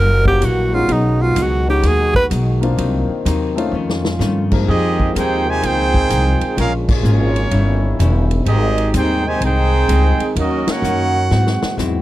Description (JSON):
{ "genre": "jazz, big band swing", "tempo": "127 BPM", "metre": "4/4", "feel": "swing 66% on 8ths", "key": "F minor from 4.7 s", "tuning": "A4 = 440 Hz", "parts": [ { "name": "warm tenor saxophone", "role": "melody", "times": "0.0-2.3 s", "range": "D#4 to B4", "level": "-16 LUFS", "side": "right 2 dB", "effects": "none" }, { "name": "archtop guitar, miked and amplified", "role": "accompaniment", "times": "0.0-12.0 s", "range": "F2 to Ab4", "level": "-25 LUFS", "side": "left 4 dB", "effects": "none" }, { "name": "warm trombone section", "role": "sustained chords", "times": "0.0-12.0 s", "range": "Db3 to Gb4", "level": "-26 LUFS", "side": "left 2 dB", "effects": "none" }, { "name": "upright bass", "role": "bass", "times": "0.0-12.0 s", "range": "Fb1 to Ab2", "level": "-17 LUFS", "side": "equal", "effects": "none" }, { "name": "warm concert grand piano", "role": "accompaniment", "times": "0.2-5.1 s", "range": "F2 to Bb4", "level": "-22 LUFS", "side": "left 4 dB", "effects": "none" }, { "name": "swinging big-band drum kit", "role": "drums", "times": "0.3-11.9 s", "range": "crash cymbal, hi-hat, kick drum, ride cymbal, snare drum", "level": "-22 LUFS", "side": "equal", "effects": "none" }, { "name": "clear trumpet section", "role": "melody", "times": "4.7-12.0 s", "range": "Bb3 to Ab5", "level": "-20 LUFS", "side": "right 1 dB", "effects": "none" }, { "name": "warm trombone section", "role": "second line", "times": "4.7-12.0 s", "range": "C3 to Ab4", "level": "-23 LUFS", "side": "right 4 dB", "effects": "none" } ], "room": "little or no reverb", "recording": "dry, close 1970s-style studio recording", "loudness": "-14 LUFS", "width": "side -15 dB against mid", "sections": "0.0-4.7 A section; 4.7-12.0 B section", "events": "tenor saxophone solo 0.0-4.7; drum fill 3.7-4.2, 11.3-11.8; band accent 6.8, 10.6", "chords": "0.0 Gb7b9; 0.9 B6; 2.8 Cm7b5; 3.7 F7b13; 4.7 Fm11; 6.6 Bbm7; 7.5 Eb7b9; 8.5 Abmaj7; 10.4 Ebm7; 11.3 Abaug7" }